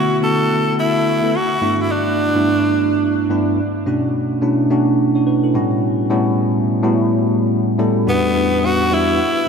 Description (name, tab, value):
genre	R&B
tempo	107 BPM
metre	4/4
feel	swing 61% on 16ths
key	unclear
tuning	A4 = 445 Hz
part	raspy tenor saxophone	melody	0.0-3.3, 8.1-9.5 s	B3 to A4	-19 LUFS	equal	analog delay
part	bell-like tine electric piano	accompaniment	0.0-9.5 s	E2 to C#5	-16 LUFS	equal	lush chorus
room	wet cathedral reverb, RT60 5.8 s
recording	dreamy mix soaked in reverb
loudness	-14 LUFS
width	side -6 dB against mid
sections	0.0-8.1 A section; 8.1-9.5 B section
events	none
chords	0.0 D6; 1.3 G6; 3.6 Bm9; 5.5 A13; 8.1 Em7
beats	0.21 0.78 | 1.34 1.90 2.46 3.02 | 3.58 4.14 4.70 5.26 | 5.82 6.38 6.94 7.50 | 8.07 8.63 9.19